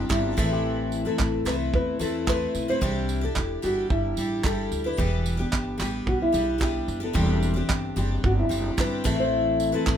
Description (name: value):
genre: acoustic pop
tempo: 111 BPM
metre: 4/4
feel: straight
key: unclear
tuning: A4 = 441 Hz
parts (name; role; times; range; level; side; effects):
- nylon-string guitar; melody; 0.0-10.0 s; E4 to C5; -28 LUFS; equal; none
- picked twelve-string acoustic guitar; accompaniment; 0.0-10.0 s; A2 to B4; -27 LUFS; left 2 dB; none
- upright bass; bass; 0.0-10.0 s; E1 to E2; -29 LUFS; equal; none
- loose indie drum kit; drums; 0.1-10.0 s; handclaps, kick drum, tambourine; -28 LUFS; right 2 dB; none
room: light reverb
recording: minimal, uncompressed stereo recording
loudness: -22 LUFS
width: side -9 dB against mid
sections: 0.0-10.0 A section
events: none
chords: 0.4 Amadd9; 2.8 Cadd9; 5.0 Em7; 7.2 Cadd9/E; 9.1 Amadd9